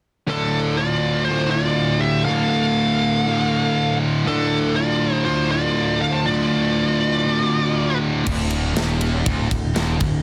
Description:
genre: heavy metal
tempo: 120 BPM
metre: 4/4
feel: straight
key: D minor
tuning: A4 = 445 Hz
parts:
  - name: high-gain lead guitar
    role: melody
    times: 0.3-8.0 s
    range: A4 to A5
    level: -25 LUFS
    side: equal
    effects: distortion, digital delay
  - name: high-gain lead guitar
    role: second line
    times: 0.3-7.9 s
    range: D4 to C5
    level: -31 LUFS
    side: equal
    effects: distortion
  - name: scooped high-gain guitar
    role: riff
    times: 0.3-10.2 s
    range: D2 to D3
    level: -27 LUFS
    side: equal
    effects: distortion
  - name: sludgy distorted guitar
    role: riff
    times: 0.3-10.2 s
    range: D2 to D3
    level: -24 LUFS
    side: equal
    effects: overdrive
  - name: modern bright picked electric bass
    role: bass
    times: 8.3-10.2 s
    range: D1 to Eb1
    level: -26 LUFS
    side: equal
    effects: none
  - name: tight metal drum kit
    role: drums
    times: 8.3-10.1 s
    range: crash cymbal, kick drum, ride cymbal, snare drum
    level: -26 LUFS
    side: equal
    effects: soft clipping on kick
room: light reverb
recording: dense, heavily limited modern master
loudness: -20 LUFS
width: mono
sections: 0.3-8.3 A section; 8.3-10.2 B section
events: none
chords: 0.3 Dm; 8.3 N.C.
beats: | 0.28 0.78 1.28 1.78 | 2.27 2.77 3.27 3.77 | 4.27 4.77 5.27 5.77 | 6.27 6.76 7.26 7.76 | 8.26 8.76 9.26 9.76

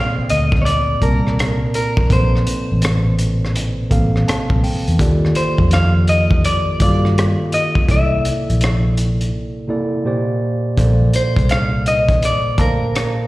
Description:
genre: R&B, neo-soul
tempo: 83 BPM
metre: 4/4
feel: swing 64% on 16ths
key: Bb major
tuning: A4 = 438 Hz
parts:
  - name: clean electric guitar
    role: melody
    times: 0.0-13.3 s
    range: Bb4 to F5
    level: -20 LUFS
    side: left 1 dB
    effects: slapback echo, plate reverb
  - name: mellow tine electric piano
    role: accompaniment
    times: 0.0-13.3 s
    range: Bb2 to A5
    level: -20 LUFS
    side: right 1 dB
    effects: none
  - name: vintage muted fingered electric bass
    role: bass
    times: 0.2-13.1 s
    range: A1 to G2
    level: -17 LUFS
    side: equal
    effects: none
  - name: crunchy breakbeat drum kit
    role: drums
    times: 0.3-13.2 s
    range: hi-hat, kick drum, rim click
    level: -20 LUFS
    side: equal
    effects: none
room: little or no reverb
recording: live gig heard through the venue's PA, recital hall reverb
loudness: -14 LUFS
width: side -18 dB against mid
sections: 0.0-10.8 A section; 10.8-13.3 A section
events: tine electric piano fill 3.9-5.0; break 9.3-10.8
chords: 0.0 Bbmaj9; 5.0 Ebmaj9#11; 7.9 C13; 10.1 Bb69; 10.8 Bbmaj9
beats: 0.65 1.38 | 2.10 2.82 3.54 4.27 | 4.99 5.71 6.44 7.16 | 7.88 8.61 9.33 10.05 | 10.77 11.50 12.22 12.94

